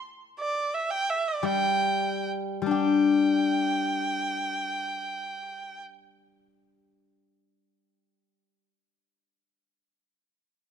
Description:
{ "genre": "chinese traditional", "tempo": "61-93 BPM", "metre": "2/4", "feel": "rubato", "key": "unclear", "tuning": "A4 = 441 Hz", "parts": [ { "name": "clear erhu", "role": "melody", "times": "0.4-5.8 s", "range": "D5 to G5", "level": "-29 LUFS", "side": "right 3 dB", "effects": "none" }, { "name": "steel-string zither", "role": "accompaniment", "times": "1.4-8.7 s", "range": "G3 to G4", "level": "-25 LUFS", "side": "left 4 dB", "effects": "none" } ], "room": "moderate scoring stage reverb, RT60 1.6 s", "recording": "close, detailed microphones", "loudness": "-24 LUFS", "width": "side -8 dB against mid", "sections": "0.0-2.7 A section; 2.7-6.4 B section", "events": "slowing down 0.0-2.7", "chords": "none" }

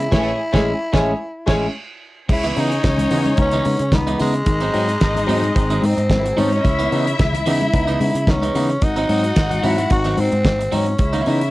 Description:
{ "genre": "disco", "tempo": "110 BPM", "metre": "4/4", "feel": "straight", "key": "unclear", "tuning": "A4 = 440 Hz", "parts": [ { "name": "raspy tenor saxophone", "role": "melody", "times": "0.0-11.5 s", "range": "G#3 to F#4", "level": "-22 LUFS", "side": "equal", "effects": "cassette tape" }, { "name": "warm studio string section", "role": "second line", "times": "0.0-11.5 s", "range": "E3 to F#5", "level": "-26 LUFS", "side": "left 1 dB", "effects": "cassette tape" }, { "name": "barky tine electric piano", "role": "accompaniment", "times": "0.0-11.4 s", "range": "G#2 to D#4", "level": "-24 LUFS", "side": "left 2 dB", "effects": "cassette tape" }, { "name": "clean electric guitar", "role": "accompaniment", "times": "0.0-11.5 s", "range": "E3 to G#4", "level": "-25 LUFS", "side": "right 3 dB", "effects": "cassette tape" }, { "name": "fingered electric bass", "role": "bass", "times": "0.0-11.5 s", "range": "G#1 to C#3", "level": "-22 LUFS", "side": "equal", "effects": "none" }, { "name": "damped 70s drum kit", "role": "drums", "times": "0.0-11.5 s", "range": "crash cymbal, hi-hat, kick drum, snare drum", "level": "-20 LUFS", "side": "equal", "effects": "cassette tape" }, { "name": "congas", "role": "percussion", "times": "2.6-11.4 s", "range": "none", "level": "-27 LUFS", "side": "left 3 dB", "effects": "none" } ], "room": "light reverb", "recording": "home recording on cassette", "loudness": "-16 LUFS", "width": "side -18 dB against mid", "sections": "0.0-2.3 A section; 2.3-11.5 B section", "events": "band accent 0.1-2.3", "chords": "0.1 Amaj7; 2.3 C#m9; 4.5 G#7; 6.6 C#m9; 8.8 G#7; 11.0 C#m9" }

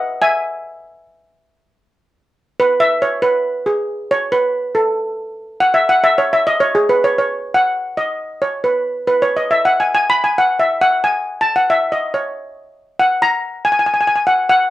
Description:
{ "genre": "calypso", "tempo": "138 BPM", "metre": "4/4", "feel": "straight", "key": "E major", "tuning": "A4 = 440 Hz", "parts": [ { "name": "steel pan", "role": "solo", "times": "0.0-14.7 s", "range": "G#4 to B5", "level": "-14 LUFS", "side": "equal", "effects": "none" } ], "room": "light reverb", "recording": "close, detailed microphones", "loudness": "-14 LUFS", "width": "side -15 dB against mid", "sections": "0.0-2.1 A section; 2.1-14.7 B section", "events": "steel pan solo 2.1-14.7", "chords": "none" }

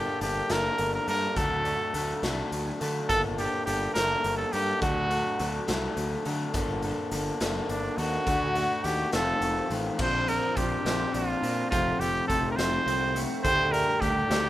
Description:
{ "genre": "indie rock", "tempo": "70 BPM (dotted quarters)", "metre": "6/8", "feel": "straight", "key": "G harmonic minor", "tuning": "A4 = 440 Hz", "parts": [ { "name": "clear trumpet", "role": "melody", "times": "0.0-14.5 s", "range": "D4 to C5", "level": "-28 LUFS", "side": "right 1 dB", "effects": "analog delay" }, { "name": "electric guitar through a small old amp", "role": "riff", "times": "0.0-14.5 s", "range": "Eb3 to A4", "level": "-31 LUFS", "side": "left 2 dB", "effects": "warbly pitch drift" }, { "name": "fuzz picked electric bass", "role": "bass", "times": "0.2-14.5 s", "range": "F1 to D3", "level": "-33 LUFS", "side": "equal", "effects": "overdrive" }, { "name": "raw garage drum kit", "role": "drums", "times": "0.2-14.4 s", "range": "crash cymbal, hi-hat, kick drum, snare drum", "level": "-34 LUFS", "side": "equal", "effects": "none" }, { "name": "overdriven electric guitar", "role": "riff", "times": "10.0-14.5 s", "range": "F3 to D4", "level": "-35 LUFS", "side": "right 8 dB", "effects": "lush chorus, analog delay" }, { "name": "string machine, cellos", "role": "sustained chords", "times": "13.4-14.5 s", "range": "D3 to G4", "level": "-43 LUFS", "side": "right 1 dB", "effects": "none" } ], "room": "light reverb", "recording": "rough home demo mix", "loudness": "-25 LUFS", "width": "side -14 dB against mid", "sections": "0.0-10.0 A section; 10.0-14.5 B section", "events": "none", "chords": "0.0 Gmadd9; 1.4 D; 3.1 Gmadd9; 4.8 D; 6.5 Gmadd9; 8.3 D; 9.1 F7; 10.0 Bbadd9; 11.7 F; 13.4 Dsus4" }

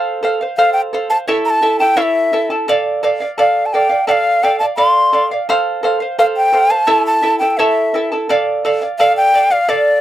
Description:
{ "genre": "andean folk, Andean ensemble", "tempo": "86 BPM", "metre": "2/4", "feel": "straight", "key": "D minor", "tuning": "A4 = 440 Hz", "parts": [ { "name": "charango", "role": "accompaniment", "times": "0.0-10.0 s", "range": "E4 to A5", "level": "-16 LUFS", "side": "right 2 dB", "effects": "none" }, { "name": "breathy bright large quena", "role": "melody", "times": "0.6-10.0 s", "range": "D5 to C6", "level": "-12 LUFS", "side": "equal", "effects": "none" } ], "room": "light reverb", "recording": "none", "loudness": "-12 LUFS", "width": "side -13 dB against mid", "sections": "0.0-10.0 A section", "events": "none", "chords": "0.0 F; 1.3 A; 2.7 Dm; 5.5 F; 6.9 A; 8.3 Dm" }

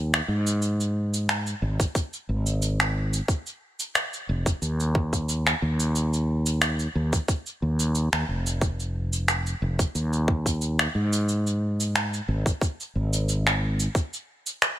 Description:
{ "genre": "organic downtempo", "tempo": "90 BPM", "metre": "4/4", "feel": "swing 53% on 16ths", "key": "F minor", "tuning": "A4 = 440 Hz", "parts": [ { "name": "fretless electric bass", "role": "bass", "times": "0.0-13.9 s", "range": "F1 to Ab2", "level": "-25 LUFS", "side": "equal", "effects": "sidechain pumping" }, { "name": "electronic finger snaps and shaker", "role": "drums", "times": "0.1-14.8 s", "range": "none", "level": "-26 LUFS", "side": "equal", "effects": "none" }, { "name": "electronic kick drum", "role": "drums", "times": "1.8-14.1 s", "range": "none", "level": "-24 LUFS", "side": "equal", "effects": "none" } ], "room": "little or no reverb", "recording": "none", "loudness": "-23 LUFS", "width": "side -13 dB against mid", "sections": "0.0-14.8 A section", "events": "none", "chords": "none" }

